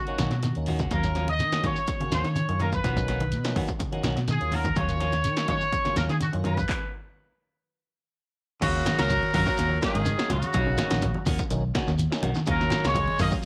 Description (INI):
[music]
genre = afrobeat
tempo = 124 BPM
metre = 4/4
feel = straight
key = Eb minor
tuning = A4 = 440 Hz
[part]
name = clear horn section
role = melody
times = 0.0-13.3 s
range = Gb4 to Eb5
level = -31 LUFS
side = equal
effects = none
[part]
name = clean electric guitar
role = arpeggios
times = 0.0-13.5 s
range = C#3 to F#3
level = -36 LUFS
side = equal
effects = none
[part]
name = tonewheel organ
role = accompaniment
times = 0.1-13.0 s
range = F#3 to F5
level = -39 LUFS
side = equal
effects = overdrive, chorus vibrato, stopped rotary speaker
[part]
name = semi-hollow electric guitar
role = stabs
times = 0.1-13.5 s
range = D#3 to F#4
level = -38 LUFS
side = equal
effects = none
[part]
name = punchy analog drum machine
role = drums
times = 0.1-13.4 s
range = crash cymbal, handclaps, hi-hat, kick drum, snare drum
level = -33 LUFS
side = equal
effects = overdrive
[part]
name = fingered electric bass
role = bass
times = 0.2-13.3 s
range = A#1 to Eb3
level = -30 LUFS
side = equal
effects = none
[part]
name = congas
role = percussion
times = 0.2-13.3 s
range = none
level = -36 LUFS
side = equal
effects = none
[part]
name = shekere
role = percussion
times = 0.2-13.5 s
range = none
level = -38 LUFS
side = equal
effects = none
[part]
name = growling tenor saxophone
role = second line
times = 8.6-13.3 s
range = Db3 to Bb3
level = -36 LUFS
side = equal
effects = slapback echo
[sound]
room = little or no reverb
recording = none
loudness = -26 LUFS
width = mono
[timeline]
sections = 0.0-8.6 A section; 8.6-13.5 B section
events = stop 6.7-8.6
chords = 0.0 Bmaj9; 0.9 Ebm9; 2.8 Bmaj9; 4.8 Ebm9; 6.7 N.C.; 8.6 Ebm9; 10.5 Bmaj9; 12.5 Ebm9